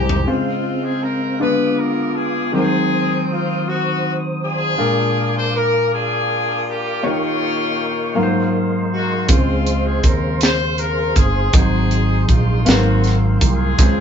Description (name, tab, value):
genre	slow gospel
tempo	53 BPM (dotted quarters)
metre	6/8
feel	straight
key	Ab major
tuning	A4 = 439 Hz
part	warm horn section	melody	0.0-14.0 s	Ab3 to C5	-21 LUFS	left 2 dB	none
part	warm concert grand piano	accompaniment	0.0-14.0 s	Ab2 to Ab5	-21 LUFS	left 1 dB	none
part	mellow tonewheel organ	sustained chords	0.0-14.0 s	Eb3 to Eb6	-26 LUFS	right 2 dB	fast rotary speaker, chorus vibrato
part	fingered electric bass	bass	0.0-0.3, 9.3-14.0 s	G1 to Eb2	-18 LUFS	equal	none
part	tight funk drum kit	drums	0.1-0.3, 9.3-14.0 s	hi-hat, kick drum, snare drum, toms	-16 LUFS	right 1 dB	none
room	wet studio ambience, RT60 0.5 s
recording	band playing live in one room, nothing above 7.6 kHz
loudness	-15 LUFS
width	side -7 dB against mid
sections	0.3-14.0 A section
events	drum fill 0.0; grand piano fill 0.0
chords	0.3 Dbmaj7; 1.4 Ddim7; 2.5 Ab7/Eb; 4.8 Bb7; 7.0 Eb7; 8.2 Ab13; 9.3 Dbmaj7; 11.5 Ab7; 12.7 Ab13